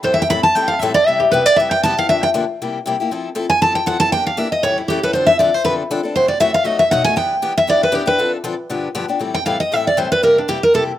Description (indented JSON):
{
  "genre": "jazz",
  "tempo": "236 BPM",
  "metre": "4/4",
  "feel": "swing 55% on 8ths",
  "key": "C major",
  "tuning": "A4 = 440 Hz",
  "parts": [
    { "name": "picked steel-string acoustic guitar", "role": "melody", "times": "0.0-10.8 s", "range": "D4 to B5", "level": "-14 LUFS", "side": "equal", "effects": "none" },
    { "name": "picked steel-string acoustic guitar", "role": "accompaniment", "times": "0.0-10.9 s", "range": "F#2 to A4", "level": "-22 LUFS", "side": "left 4 dB", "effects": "none" }
  ],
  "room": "moderate small room reverb, RT60 0.5 s",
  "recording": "rough home demo mix",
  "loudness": "-14 LUFS",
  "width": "side -12 dB against mid",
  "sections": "0.0-1.1 A section; 1.1-9.2 A section; 9.2-11.0 A section",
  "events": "steel-string acoustic guitar solo 0.0-9.2, 9.2-11.0",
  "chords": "0.0 Am7; 1.1 Cmaj7; 2.1 Gm7; 2.6 C7; 3.1 Fmaj7; 4.1 Em7b5; 4.6 A7; 5.1 Dm7; 6.1 F#m7b5; 6.7 B7; 7.2 Em7; 8.2 Dm7; 8.7 G7; 9.2 Am7; 10.2 C7"
}